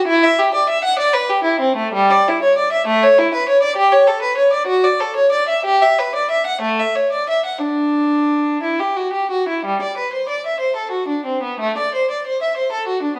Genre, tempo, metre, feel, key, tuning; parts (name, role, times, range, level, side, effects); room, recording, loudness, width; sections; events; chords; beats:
classical, baroque-style suite movement for unaccompanied violin; 57-68 BPM (dotted quarters); 6/8; rubato; D major, G major from 9.6 s; A4 = 440 Hz
rich violin; solo; 0.0-13.2 s; G3 to F#5; -17 LUFS; equal
wet stone room reverb, RT60 1.1 s; heard from further back in the room; -17 LUFS; mono
0.0-9.6 A section; 9.6-13.2 A section
| 0.05 0.97 | 1.93 2.87 | 3.75 4.67 | 5.64 6.62 | 7.61 8.63 | 9.65 10.60 | 11.60 12.55